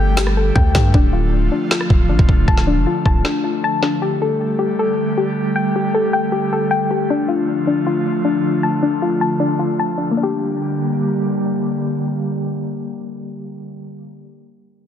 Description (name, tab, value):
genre	hip hop, trap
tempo	156 BPM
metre	4/4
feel	half-time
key	G minor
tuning	A4 = 440 Hz
part	airy breathy pad	sustained chords	0.0-14.0 s	D3 to G4	-21 LUFS	right 1 dB	chorus, tremolo
part	soft round pluck	arpeggios	0.0-14.3 s	Bb3 to A5	-19 LUFS	left 4 dB	chorus, low-pass filter, tape echo
part	hard-hitting 808-style bass	bass	0.0-3.2 s	D1 to G2	-17 LUFS	equal	none
part	trap drum kit	drums	0.2-3.9 s	kick drum, rim click, snare drum	-16 LUFS	equal	none
room	light reverb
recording	dense, heavily limited modern master, low-pass filter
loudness	-15 LUFS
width	side -9 dB against mid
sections	0.0-10.2 A section; 10.2-13.2 B section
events	break 0.0-4.0; filter sweep 0.0-10.2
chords	0.0 Gsus2; 0.9 Dm; 4.0 Gsus2; 7.1 Dm; 10.2 Gm